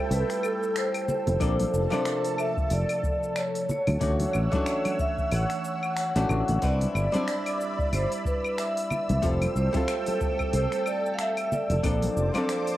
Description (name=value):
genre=sunset chillout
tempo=92 BPM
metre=4/4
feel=swing 58% on 16ths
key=unclear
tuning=A4 = 443 Hz
part: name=vibraphone with medium hard mallets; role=melody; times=0.0-12.8 s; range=A4 to F#5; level=-29 LUFS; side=right 1 dB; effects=cassette tape, analog delay
part: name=archtop guitar, miked and amplified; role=accompaniment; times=0.0-12.8 s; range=C3 to D5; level=-31 LUFS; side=moving between left 5 dB and right 4 dB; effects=auto-pan, cassette tape
part: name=lush unison pad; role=sustained chords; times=0.0-12.8 s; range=A4 to E6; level=-34 LUFS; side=equal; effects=chorus, phaser, cassette tape
part: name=fingered electric bass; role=bass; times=0.1-12.3 s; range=F1 to D2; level=-26 LUFS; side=equal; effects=none
part: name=deep house drum kit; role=drums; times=0.1-12.8 s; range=claves, finger snaps, hi-hat, shaker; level=-36 LUFS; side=left 1 dB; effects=none
part: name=congas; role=percussion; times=1.1-12.5 s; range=none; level=-33 LUFS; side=left 1 dB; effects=none
part: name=electronic kick drum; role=drums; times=1.4-12.0 s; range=none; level=-30 LUFS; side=equal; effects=none
room=light reverb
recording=home recording on cassette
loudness=-24 LUFS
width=side -14 dB against mid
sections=0.0-12.8 A section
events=none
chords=0.0 Fmaj9; 1.4 Bbmaj9; 3.7 Dmaj9; 6.6 Cmaj9; 9.2 Fmaj9; 11.8 Bbmaj9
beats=0.10 0.75 | 1.41 2.06 2.71 3.36 | 4.01 4.67 5.32 5.97 | 6.62 7.28 7.93 8.58 | 9.23 9.88 10.54 11.19 | 11.84 12.49